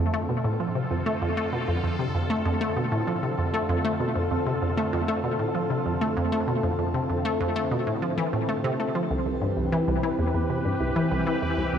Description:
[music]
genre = ambient, sequencer-driven space music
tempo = 97 BPM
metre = 4/4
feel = straight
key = unclear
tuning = A4 = 440 Hz
[part]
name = sweeping resonant pad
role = sustained chords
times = 0.0-11.8 s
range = D3 to B4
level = -29 LUFS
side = left 1 dB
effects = chorus, shimmer reverb
[part]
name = resonant blip pluck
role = riff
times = 0.0-11.8 s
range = C2 to A3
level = -25 LUFS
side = equal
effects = chorus, analog delay, shimmer reverb
[sound]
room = moderate plate reverb, RT60 2.7 s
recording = none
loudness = -24 LUFS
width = side -8 dB against mid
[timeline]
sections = 0.0-11.8 A section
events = none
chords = 0.0 F6; 9.1 Cmaj7

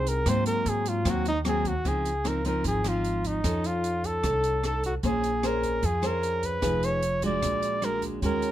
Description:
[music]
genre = bossa nova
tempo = 151 BPM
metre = 4/4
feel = straight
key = Db major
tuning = A4 = 439 Hz
[part]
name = warm flugelhorn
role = melody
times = 0.0-8.5 s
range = Eb4 to D5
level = -28 LUFS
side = equal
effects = none
[part]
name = nylon-string guitar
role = accompaniment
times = 0.0-8.5 s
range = Ab2 to C5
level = -30 LUFS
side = left 1 dB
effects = none
[part]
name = upright bass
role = bass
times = 0.0-8.5 s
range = F1 to Ab2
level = -31 LUFS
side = equal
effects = none
[part]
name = open jazz drum kit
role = drums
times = 0.1-8.5 s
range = hi-hat, kick drum, rim click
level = -35 LUFS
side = right 1 dB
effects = none
[part]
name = breathy trombone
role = second line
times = 8.2-8.5 s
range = Db4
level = -34 LUFS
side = right 6 dB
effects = none
[sound]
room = little or no reverb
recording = none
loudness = -24 LUFS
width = side -12 dB against mid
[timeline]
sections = 0.0-1.8 A section; 1.8-8.5 B section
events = flugelhorn solo 0.0-1.8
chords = 0.3 Ab9; 1.8 Dbmaj9; 3.4 F7b13; 5.0 Bbm9; 6.6 Fm7b5; 7.4 Bbaug7

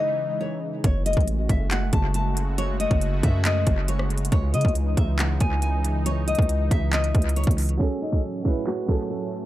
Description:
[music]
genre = hip hop, trap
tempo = 138 BPM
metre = 4/4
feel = half-time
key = F# dorian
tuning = A4 = 440 Hz
[part]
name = nylon-string guitar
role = melody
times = 0.0-9.5 s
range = C#4 to A5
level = -28 LUFS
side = left 2 dB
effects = tape echo
[part]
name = sweeping resonant pad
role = sustained chords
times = 0.0-9.5 s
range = A2 to F#4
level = -31 LUFS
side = right 1 dB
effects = chorus
[part]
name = distorted 808-style bass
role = bass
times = 0.8-7.8 s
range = F#1 to C#3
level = -23 LUFS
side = equal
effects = distortion
[part]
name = trap drum kit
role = drums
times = 0.8-9.4 s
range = handclaps, hi-hat, kick drum, rim click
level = -24 LUFS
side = equal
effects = overdrive
[part]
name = felt-muted upright piano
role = accompaniment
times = 7.8-9.5 s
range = F#3 to B4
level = -30 LUFS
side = right 4 dB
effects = tape echo
[sound]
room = little or no reverb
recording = echo-heavy mix, low-pass filter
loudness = -21 LUFS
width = side -14 dB against mid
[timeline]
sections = 0.0-7.8 A section; 7.8-9.5 B section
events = none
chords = 0.0 C#madd9; 0.8 F#madd9; 4.3 C#madd9; 7.8 F#madd9

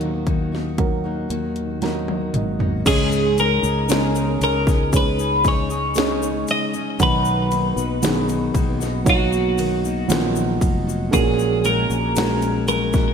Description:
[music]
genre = pop ballad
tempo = 58 BPM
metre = 4/4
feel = straight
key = unclear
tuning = A4 = 441 Hz
[part]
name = twelve-string electric guitar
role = melody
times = 0.0-13.1 s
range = Gb4 to Eb5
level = -22 LUFS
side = right 1 dB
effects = wide subtle chorus
[part]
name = felt-muted upright piano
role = accompaniment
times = 0.0-13.1 s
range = Ab2 to Bb5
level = -24 LUFS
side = right 4 dB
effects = none
[part]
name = fingerpicked steel-string acoustic guitar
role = arpeggios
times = 0.0-13.1 s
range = Bb2 to Ab4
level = -27 LUFS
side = left 7 dB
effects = wide subtle chorus, ping-pong delay
[part]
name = fretless electric bass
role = bass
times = 0.0-13.1 s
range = F1 to Eb2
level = -24 LUFS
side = left 1 dB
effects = wide subtle chorus
[part]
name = house drum kit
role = drums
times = 0.0-13.1 s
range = crash cymbal, hi-hat, kick drum, ride cymbal, snare drum, toms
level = -23 LUFS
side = equal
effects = gated reverb
[part]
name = tube shaker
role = percussion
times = 2.9-13.1 s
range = none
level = -34 LUFS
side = left 16 dB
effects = none
[sound]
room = moderate plate reverb, RT60 2.5 s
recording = bright 1980s-style digital production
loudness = -17 LUFS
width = side -7 dB against mid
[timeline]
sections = 0.0-2.9 A section; 2.9-13.1 B section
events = felt piano fill 1.3-2.9; drum fill 1.8-2.9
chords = 0.0 Ebm; 2.9 Dbsus2; 7.0 Bmaj7; 11.1 Gbadd9/Bb

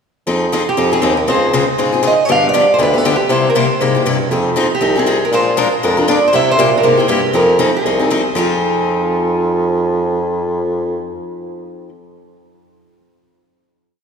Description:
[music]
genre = acoustic string swing (jazz manouche)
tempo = 237 BPM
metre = 4/4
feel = swing 57% on 8ths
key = F minor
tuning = A4 = 440 Hz
[part]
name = picked steel-string acoustic guitar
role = accompaniment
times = 0.3-11.9 s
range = C3 to Bb4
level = -17 LUFS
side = left 3 dB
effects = none
[part]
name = warm bassoon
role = bass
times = 0.3-11.1 s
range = C2 to C3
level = -17 LUFS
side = right 1 dB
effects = none
[part]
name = picked steel-string acoustic guitar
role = melody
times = 0.5-11.9 s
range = F4 to F5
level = -16 LUFS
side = right 2 dB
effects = none
[sound]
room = wet church reverb, RT60 3.2 s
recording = recorded in a church or concert hall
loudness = -12 LUFS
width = side -6 dB against mid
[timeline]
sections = 0.3-8.4 A section; 8.4-10.4 final chord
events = none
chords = 0.3 Fm7; 1.3 Dbmaj7; 2.3 G7; 3.3 C7; 4.3 Fm7; 5.3 Bb7; 6.3 C7; 7.3 Fm7

